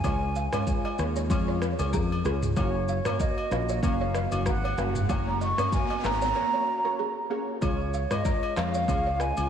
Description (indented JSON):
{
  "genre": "afrobeats",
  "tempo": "95 BPM",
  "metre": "4/4",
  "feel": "swing 55% on 16ths",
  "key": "Db major",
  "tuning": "A4 = 440 Hz",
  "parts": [
    { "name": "mellow concert flute", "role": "melody", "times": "0.0-9.5 s", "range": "Db5 to Db6", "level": "-30 LUFS", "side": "right 2 dB", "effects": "diffuse ambient delay" },
    { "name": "warm analog keys", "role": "accompaniment", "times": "0.0-9.5 s", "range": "Ab3 to Db5", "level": "-33 LUFS", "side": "equal", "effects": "chorus" },
    { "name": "balafon", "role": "riff", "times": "0.0-9.3 s", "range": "Ab4 to F5", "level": "-36 LUFS", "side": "right 5 dB", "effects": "diffuse ambient delay" },
    { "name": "fingered electric bass", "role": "bass", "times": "0.0-9.5 s", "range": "Gb1 to F2", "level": "-29 LUFS", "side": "left 1 dB", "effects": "none" },
    { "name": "afro-pop drum kit", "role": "drums", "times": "0.0-9.5 s", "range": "handclaps, kick drum, rim click, shaker, toms", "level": "-30 LUFS", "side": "equal", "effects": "none" },
    { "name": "agogo bells and woodblock", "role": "percussion", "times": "0.0-9.5 s", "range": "none", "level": "-38 LUFS", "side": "left 2 dB", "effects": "none" },
    { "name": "riser", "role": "sound effects", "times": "4.1-6.4 s", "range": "none", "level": "-38 LUFS", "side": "equal", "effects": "none" }
  ],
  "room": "moderate lush hall reverb, RT60 2.0 s, digital ambience",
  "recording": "dreamy mix soaked in reverb",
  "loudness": "-24 LUFS",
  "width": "side -8 dB against mid",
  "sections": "0.0-7.6 A section; 7.6-9.5 B section",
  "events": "riser 4.1-7.6",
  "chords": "0.0 Db; 2.6 Gb; 7.6 Db"
}